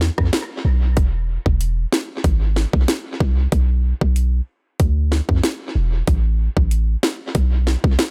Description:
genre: dancehall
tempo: 94 BPM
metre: 4/4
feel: straight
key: A harmonic minor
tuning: A4 = 440 Hz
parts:
  - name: warm 808-style bass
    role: bass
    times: 0.0-8.0 s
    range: E1 to F2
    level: -20 LUFS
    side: equal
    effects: none
  - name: island pop drum kit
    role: drums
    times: 0.0-8.1 s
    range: hi-hat, kick drum, rim click, snare drum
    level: -22 LUFS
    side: equal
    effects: dub echo
room: digital ambience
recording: echo-heavy mix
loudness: -19 LUFS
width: mono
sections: 0.0-8.1 A section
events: none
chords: none

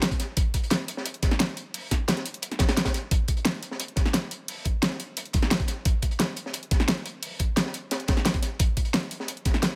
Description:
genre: drum and bass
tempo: 175 BPM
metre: 4/4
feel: straight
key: none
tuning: none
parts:
  - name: crunchy breakbeat drum kit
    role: drums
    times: 0.0-9.7 s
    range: hi-hat, snare drum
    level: -34 LUFS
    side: equal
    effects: high-pass filter on hats, high-pass filter on snare, high-pass filter on room
  - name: pop drum kit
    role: drums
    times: 0.0-9.7 s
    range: hi-hat, snare drum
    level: -29 LUFS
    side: equal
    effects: overdrive
  - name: electronic kick drum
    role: drums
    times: 0.1-9.5 s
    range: none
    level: -27 LUFS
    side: equal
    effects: overdrive
room: little or no reverb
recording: none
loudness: -27 LUFS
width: mono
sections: 0.0-9.8 A section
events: none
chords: none

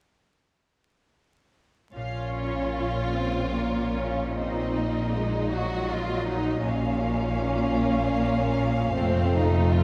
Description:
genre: classical, slow romantic movement for symphony orchestra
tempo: 51 BPM (dotted quarters)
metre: 6/8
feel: uneven beats, rubato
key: Bb minor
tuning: A4 = 440 Hz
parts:
  - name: warm chamber violin section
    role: melody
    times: 1.9-9.8 s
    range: Db5 to F5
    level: -38 LUFS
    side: equal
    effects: none
  - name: rich studio cello section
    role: bass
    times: 1.9-9.8 s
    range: F2 to Bb2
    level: -33 LUFS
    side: equal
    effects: none
  - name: warm chamber double bass section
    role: bass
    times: 1.9-9.8 s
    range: F1 to Bb1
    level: -33 LUFS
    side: equal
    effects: none
  - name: rich chamber violin section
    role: second line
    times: 2.0-9.8 s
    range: C4 to Gb4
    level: -32 LUFS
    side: equal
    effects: none
  - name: rich chamber viola section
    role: accompaniment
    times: 2.0-9.8 s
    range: Gb3 to Db4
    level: -33 LUFS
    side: equal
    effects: none
  - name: concert harp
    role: arpeggios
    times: 2.0-9.8 s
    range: F2 to C5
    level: -34 LUFS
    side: equal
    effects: none
room: wet cathedral reverb, RT60 4.4 s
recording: recorded in a church or concert hall, vinyl crackle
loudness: -26 LUFS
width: mono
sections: 1.9-9.8 A section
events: none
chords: 1.9 Bbm; 4.4 Cm7b5/Bb; 6.7 Bbm; 9.0 F7

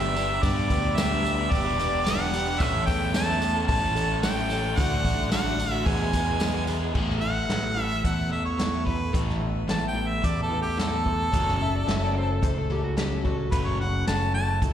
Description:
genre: folk rock and heartland rock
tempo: 110 BPM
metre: 4/4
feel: straight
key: A mixolydian, A major from 7.0 s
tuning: A4 = 440 Hz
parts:
  - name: warm harmonica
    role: melody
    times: 0.0-14.6 s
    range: G4 to A5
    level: -28 LUFS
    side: right 1 dB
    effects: slapback echo, digital delay
  - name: picked plugged-in twelve-string acoustic guitar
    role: accompaniment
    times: 0.0-14.7 s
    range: E2 to A4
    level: -32 LUFS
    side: left 6 dB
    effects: slapback echo
  - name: mellow tonewheel organ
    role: sustained chords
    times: 0.0-6.9 s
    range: E4 to D5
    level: -41 LUFS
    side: right 1 dB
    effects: none
  - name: raw garage guitar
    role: riff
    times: 0.0-14.7 s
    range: E2 to A4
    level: -32 LUFS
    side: right 1 dB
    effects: overdrive, slapback echo
  - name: modern bright fingered electric bass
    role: bass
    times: 0.0-14.7 s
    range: E1 to G2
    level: -28 LUFS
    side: right 1 dB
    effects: none
  - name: vintage drum kit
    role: drums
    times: 0.2-14.7 s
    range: crash cymbal, hi-hat, kick drum, snare drum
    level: -29 LUFS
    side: equal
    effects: none
  - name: tambourine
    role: percussion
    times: 0.2-6.8 s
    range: none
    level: -42 LUFS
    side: right 2 dB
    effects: none
  - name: electric slide guitar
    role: second line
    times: 11.6-13.5 s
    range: F#4 to E5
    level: -34 LUFS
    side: equal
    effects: slapback echo
room: light reverb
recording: live gig heard through the venue's PA, recital hall reverb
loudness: -23 LUFS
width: side -10 dB against mid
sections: 0.0-7.0 A section; 7.0-14.7 B section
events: harmonica solo 7.0-14.7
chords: 0.0 G; 2.6 A; 4.8 D; 5.9 E; 7.0 Asus2; 11.3 F#m

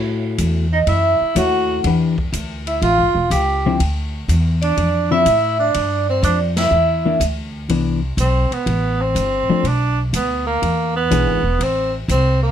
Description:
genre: jazz, small-group swing and bop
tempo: 123 BPM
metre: 4/4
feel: swing 69% on 8ths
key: C major from 7.7 s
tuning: A4 = 440 Hz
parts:
  - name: hollow-body jazz guitar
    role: accompaniment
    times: 0.0-11.4 s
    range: D3 to C#5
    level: -19 LUFS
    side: left 5 dB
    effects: none
  - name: upright bass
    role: bass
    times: 0.0-12.5 s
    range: E1 to A2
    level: -19 LUFS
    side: equal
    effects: none
  - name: open jazz drum kit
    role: drums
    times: 0.4-12.2 s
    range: hi-hat, kick drum, ride cymbal, snare drum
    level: -30 LUFS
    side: left 2 dB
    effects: none
  - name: vibraphone with soft mallets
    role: melody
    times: 0.7-7.2 s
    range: C5 to G5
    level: -19 LUFS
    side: right 1 dB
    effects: none
  - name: clear tenor saxophone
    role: second line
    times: 0.7-12.5 s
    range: A#3 to G4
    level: -20 LUFS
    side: right 2 dB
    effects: none
room: light reverb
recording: none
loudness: -15 LUFS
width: side -9 dB against mid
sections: 0.0-7.7 A section; 7.7-12.5 B section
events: band accent 6.5; tenor saxophone solo 7.7-12.5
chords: 0.0 A6; 1.8 Em7; 2.8 A7b13; 3.8 Dmadd9; 5.7 Dm11; 6.7 Dsus2; 7.7 Cmaj9; 9.6 Bm; 10.6 E7; 11.6 Am

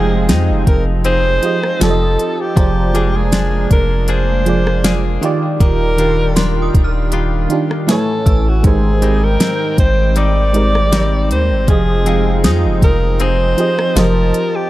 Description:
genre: contemporary R&B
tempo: 79 BPM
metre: 4/4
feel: swing 54% on 16ths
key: F dorian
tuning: A4 = 440 Hz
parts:
  - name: breathy alto saxophone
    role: melody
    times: 0.0-14.7 s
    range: Gb4 to D5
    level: -19 LUFS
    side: equal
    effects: tape echo
  - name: FM electric piano with tremolo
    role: accompaniment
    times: 0.0-14.7 s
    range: Eb3 to G#5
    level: -20 LUFS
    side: right 4 dB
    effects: none
  - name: lush unison pad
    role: sustained chords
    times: 0.0-14.7 s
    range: Eb3 to A5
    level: -24 LUFS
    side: right 1 dB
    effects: chorus, sidechain pumping
  - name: direct-recorded clean electric guitar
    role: arpeggios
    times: 0.0-14.7 s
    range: Ab2 to Ab4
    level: -24 LUFS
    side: left 7 dB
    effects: tape echo
  - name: long sustained 808-style bass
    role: bass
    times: 0.0-14.3 s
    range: Eb1 to F2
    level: -16 LUFS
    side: equal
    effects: none
  - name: synth chime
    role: texture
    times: 0.0-14.2 s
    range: G5 to F6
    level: -33 LUFS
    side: right 1 dB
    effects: ensemble chorus, tremolo, tape echo
  - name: smooth R&B drum kit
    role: drums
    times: 0.3-14.5 s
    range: hi-hat, kick drum, rim click, snare drum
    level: -15 LUFS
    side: equal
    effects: none
room: digital ambience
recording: dark, warm production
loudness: -12 LUFS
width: side -16 dB against mid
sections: 0.0-14.7 A section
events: none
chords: 0.0 Fm7; 1.8 F7; 2.6 Bb7/F; 5.2 Ebmaj9; 7.9 Amaj7; 8.6 Abmaj7; 11.7 Fm7; 14.0 F7

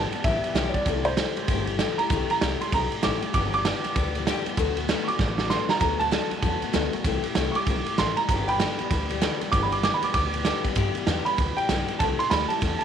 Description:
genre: rockabilly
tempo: 194 BPM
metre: 4/4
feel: swing 62% on 8ths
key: G major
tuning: A4 = 439 Hz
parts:
  - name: dark upright piano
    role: melody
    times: 0.0-12.8 s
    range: C5 to D6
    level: -27 LUFS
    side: right 3 dB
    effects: none
  - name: picked steel-string acoustic guitar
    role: accompaniment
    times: 0.0-12.8 s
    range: G2 to G4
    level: -29 LUFS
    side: left 14 dB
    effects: none
  - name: upright bass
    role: bass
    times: 0.0-12.8 s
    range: G1 to G2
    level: -30 LUFS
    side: left 1 dB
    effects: none
  - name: raw garage drum kit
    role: drums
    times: 0.1-12.8 s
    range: kick drum, ride cymbal, snare drum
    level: -26 LUFS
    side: right 3 dB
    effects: none
room: small room ambience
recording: 1960s-style stereo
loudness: -22 LUFS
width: side -8 dB against mid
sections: 0.0-10.8 A section; 10.8-12.8 B section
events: upright piano solo 0.0-10.8; drum fill 5.2-5.8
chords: 0.0 G6; 0.9 C6; 3.3 G6; 4.6 D6; 7.0 C6; 8.3 G6; 12.0 C6

